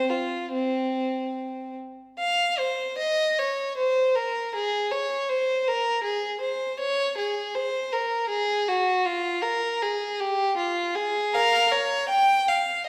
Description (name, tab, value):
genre	classical, baroque-style suite movement for unaccompanied violin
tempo	79 BPM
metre	3/4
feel	rubato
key	unclear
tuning	A4 = 438 Hz
part	rich violin	solo	0.0-12.9 s	C4 to G5	-25 LUFS	equal	none
room	wet recital hall reverb, RT60 1.3 s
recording	recorded in a church or concert hall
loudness	-25 LUFS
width	mono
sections	0.0-2.2 A section; 2.2-12.9 B section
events	none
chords	none